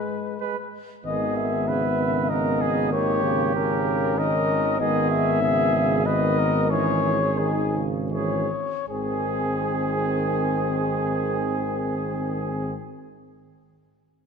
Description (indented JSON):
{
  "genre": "classical, brass quintet",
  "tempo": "77-98 BPM",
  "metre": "3/4",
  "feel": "rubato",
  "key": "G# minor",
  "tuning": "A4 = 440 Hz",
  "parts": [
    { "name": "mellow trumpet", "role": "melody", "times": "0.0-12.7 s", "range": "G#4 to E5", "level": "-26 LUFS", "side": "left 6 dB", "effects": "none" },
    { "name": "warm French horn", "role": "accompaniment", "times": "0.0-12.7 s", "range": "G#3 to D#4", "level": "-29 LUFS", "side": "left 2 dB", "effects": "none" },
    { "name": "clear trumpet", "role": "second line", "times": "0.4-12.7 s", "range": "G4 to B4", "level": "-29 LUFS", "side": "right 9 dB", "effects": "none" },
    { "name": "bright trombone", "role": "accompaniment", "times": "0.4-12.7 s", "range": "C#3 to G#3", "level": "-31 LUFS", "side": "right 4 dB", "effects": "none" },
    { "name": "mellow tuba", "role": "bass", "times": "1.1-12.7 s", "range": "G#1", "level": "-27 LUFS", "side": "right 2 dB", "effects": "none" }
  ],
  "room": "moderate concert hall reverb, RT60 2.2 s",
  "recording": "lossy compression artefacts",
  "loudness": "-21 LUFS",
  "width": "side -6 dB against mid",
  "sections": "0.0-1.1 A section; 1.1-8.9 B section; 8.9-13.3 C section",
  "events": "slowing down 3.9-8.9",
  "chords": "0.0 G#m; 2.9 D#7/G#; 4.8 G#m; 6.7 C#m/G#; 8.9 G#",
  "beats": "0.40 | 1.05 1.68 2.30 | 2.92 3.55 4.19 | 4.80 5.42 6.06 | 6.71 7.38 8.12 | 8.88 9.61 10.34 | 11.07 11.81 12.55"
}